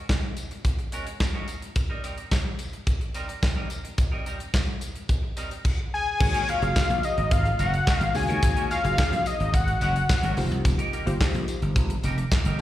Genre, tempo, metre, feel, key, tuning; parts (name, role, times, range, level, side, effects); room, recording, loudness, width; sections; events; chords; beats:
early-eighties boogie funk; 108 BPM; 4/4; straight; A4 = 439 Hz
clean electric guitar; riff; 0.1-12.6 s; G3 to Bb4; -35 LUFS; right 2 dB; wide subtle chorus, slapback echo
modern studio drum kit; drums; 0.1-12.6 s; crash cymbal, handclaps, hi-hat, kick drum, snare drum; -25 LUFS; equal
tambourine; percussion; 0.1-12.4 s; -44 LUFS; left 3 dB
fat analog lead; melody; 5.9-10.3 s; Eb5 to Ab5; -26 LUFS; left 2 dB; plate reverb, slapback echo, tape echo
funky polysynth comp; accompaniment; 6.2-12.6 s; Bb3 to Db5; -33 LUFS; left 3 dB; chorus, plate reverb, slapback echo
slap bass; bass; 6.2-12.6 s; F1 to Eb2; -26 LUFS; equal
light reverb; live gig heard through the venue's PA, recital hall reverb; -23 LUFS; side -14 dB against mid
0.0-6.2 A section; 6.2-12.6 B section
0.0 Ab9sus4; 1.5 Gmadd11; 6.2 Ab9sus4; 10.4 F9sus4
0.09 0.65 1.20 | 1.76 2.31 2.87 3.43 | 3.98 4.54 5.09 5.65 | 6.20 6.76 7.32 7.87 | 8.43 8.98 9.54 10.09 | 10.65 11.20 11.76 12.31